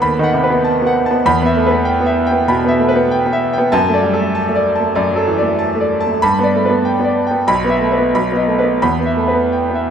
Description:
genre	classical, virtuoso piano study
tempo	96 BPM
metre	4/4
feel	rubato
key	E minor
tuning	A4 = 440 Hz
part	bright concert grand piano	solo	0.0-9.9 s	B1 to B5	-12 LUFS	equal	none
room	moderate recital hall reverb, RT60 1.5 s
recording	minimal, uncompressed stereo recording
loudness	-13 LUFS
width	side -8 dB against mid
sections	0.0-9.9 A section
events	none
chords	0.0 B7/D#; 1.3 Em; 3.7 D/F#; 6.2 G; 7.5 E5/B; 8.1 B7; 8.8 Em

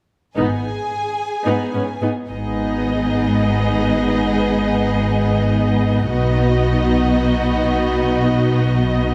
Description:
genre	cinematic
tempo	free time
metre	none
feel	none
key	G# minor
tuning	A4 = 440 Hz
part	rich studio violin section	second line	0.4-9.1 s	F#4 to G#5	-26 LUFS	equal	none
part	rich symphonic viola section	accompaniment	0.4-9.1 s	B3 to D#4	-23 LUFS	equal	none
part	clear symphonic double bass section	bass	0.4-9.1 s	G#1 to B1	-24 LUFS	equal	none
part	rich symphonic cello section	bass	0.4-9.1 s	G#2 to B2	-23 LUFS	equal	none
room	moderate scoring stage reverb, RT60 1.6 s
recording	none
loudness	-18 LUFS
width	mono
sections	0.4-2.3 A section; 2.3-9.1 B section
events	none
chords	0.4 G#m; 6.1 B

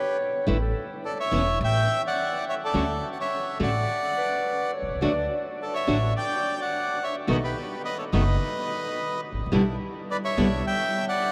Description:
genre	tango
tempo	106 BPM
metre	4/4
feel	rubato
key	D major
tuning	A4 = 441 Hz
part	bandoneon	melody	0.0-11.3 s	G4 to G5	-29 LUFS	equal	none
part	mellow clarinet	second line	0.0-5.4 s	A4 to D5	-36 LUFS	equal	none
part	nylon-string guitar	accompaniment	0.5-10.5 s	B2 to F#4	-32 LUFS	equal	none
part	upright bass	bass	0.5-10.6 s	E1 to D2	-29 LUFS	equal	none
part	bandoneon	stabs	5.0-10.6 s	F#3 to E4	-40 LUFS	equal	none
room	wet huge ambient reverb, RT60 9.0 s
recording	in a vast, echoing space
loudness	-26 LUFS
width	mono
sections	0.0-11.3 A section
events	none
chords	0.5 Asus4; 1.6 A5; 2.7 Dmaj7; 5.0 D; 7.3 B7; 9.5 Em7/B

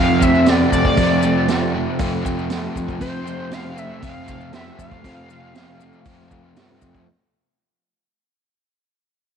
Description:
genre	psychedelic rock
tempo	118 BPM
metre	4/4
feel	straight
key	unclear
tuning	A4 = 440 Hz
part	lead with added fifth	melody	0.0-6.5 s	C5 to F5	-23 LUFS	equal	chorus, tape echo
part	crunchy overdriven guitar	riff	0.0-7.1 s	F2 to C4	-20 LUFS	equal	harmonic tremolo
part	fuzz picked electric bass	bass	0.0-7.0 s	F2 to G2	-24 LUFS	right 1 dB	overdrive
part	vintage drum kit	drums	0.2-7.1 s	hi-hat, kick drum, snare drum	-22 LUFS	right 2 dB	none
part	maracas	percussion	0.2-7.0 s	none	-39 LUFS	left 13 dB	none
room	light reverb, studio ambience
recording	1960s-style stereo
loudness	-16 LUFS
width	side -7 dB against mid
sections	0.0-7.1 A section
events	fade-out 0.0-7.1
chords	0.0 F

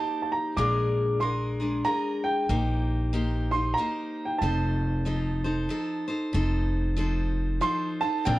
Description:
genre	acoustic folk duo or small band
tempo	94 BPM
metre	3/4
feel	swing 61% on 8ths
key	unclear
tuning	A4 = 441 Hz
part	warm upright piano	melody	0.0-8.4 s	G5 to D6	-29 LUFS	right 2 dB	none
part	picked steel-string acoustic guitar	accompaniment	0.0-8.4 s	Bb2 to C5	-29 LUFS	left 1 dB	none
part	upright bass	bass	0.6-8.4 s	F1 to Bb1	-27 LUFS	equal	none
room	light reverb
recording	worn, warbling old tape, cassette tape, warbly pitch drift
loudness	-25 LUFS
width	side -17 dB against mid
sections	0.0-6.3 A section; 6.3-8.3 B section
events	none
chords	0.0 Cm7/Bb; 0.6 Bb7; 2.5 Eb6/Bb; 4.4 F7

